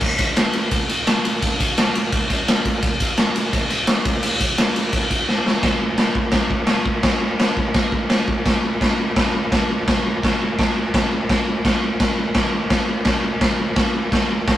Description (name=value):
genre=rock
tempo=170 BPM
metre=4/4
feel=straight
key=none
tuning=none
part: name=raw garage drum kit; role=drums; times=0.0-14.6 s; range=crash cymbal, kick drum, ride cymbal, snare drum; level=-17 LUFS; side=equal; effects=none
room=light reverb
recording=rough rehearsal-room recording, tube saturation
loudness=-17 LUFS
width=side -13 dB against mid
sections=0.0-5.6 A section; 5.6-8.5 B section; 8.5-14.6 C section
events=drum fill 5.3-5.6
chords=none